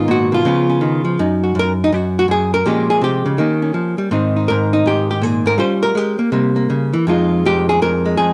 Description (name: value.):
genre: solo jazz.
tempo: 163 BPM.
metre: 4/4.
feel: swing 64% on 8ths.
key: F minor.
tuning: A4 = 440 Hz.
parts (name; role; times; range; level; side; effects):
archtop guitar, miked and amplified; solo; 0.0-8.3 s; F2 to C5; -16 LUFS; equal; none.
room: digital ambience.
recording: dry, close 1970s-style studio recording.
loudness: -16 LUFS.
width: mono.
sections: 0.0-8.3 A section.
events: none.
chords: 0.4 Db7; 1.2 Gb69; 2.6 Bbm7; 3.4 Eb7; 4.1 Ab; 5.6 Gm7b5; 6.3 C7; 7.1 Fm7.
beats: 0.08 0.45 0.81 | 1.18 1.54 1.91 2.28 | 2.65 3.01 3.38 3.75 | 4.12 4.48 4.85 5.22 | 5.58 5.95 6.32 6.69 | 7.06 7.42 7.79 8.16.